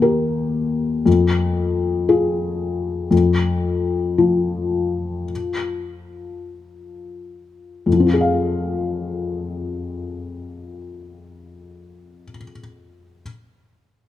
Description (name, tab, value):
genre	classical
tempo	42-59 BPM (dotted quarters)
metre	6/8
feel	rubato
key	F minor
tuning	A4 = 442 Hz
part	felt-muted upright piano	accompaniment	0.0-13.2 s	Eb2 to F5	-19 LUFS	left 3 dB	none
room	light reverb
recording	dark, warm production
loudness	-18 LUFS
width	side -12 dB against mid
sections	0.0-7.9 A section; 7.9-13.2 B section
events	slowing down 2.1-7.9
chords	0.0 Eb; 1.1 Fm; 3.1 N.C.; 7.9 Fm